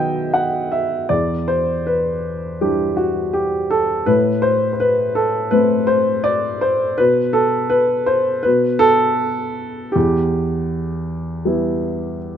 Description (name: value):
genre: classical, lyrical solo piano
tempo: 81 BPM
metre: 4/4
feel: rubato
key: E minor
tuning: A4 = 440 Hz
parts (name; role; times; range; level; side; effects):
- dark upright piano; solo; 0.0-12.4 s; E2 to G5; -16 LUFS; equal; none
room: moderate recital hall reverb, RT60 1.7 s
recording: close, detailed microphones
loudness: -16 LUFS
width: side -9 dB against mid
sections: 0.0-12.4 A section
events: none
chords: 0.0 B; 1.1 Em7; 4.1 Am; 7.0 N.C.; 10.0 Em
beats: 0.34 | 1.11 1.87 2.62 3.35 | 4.08 4.80 5.53 6.26 | 7.00 7.73 8.46 9.20 | 9.96 10.70 11.46 12.23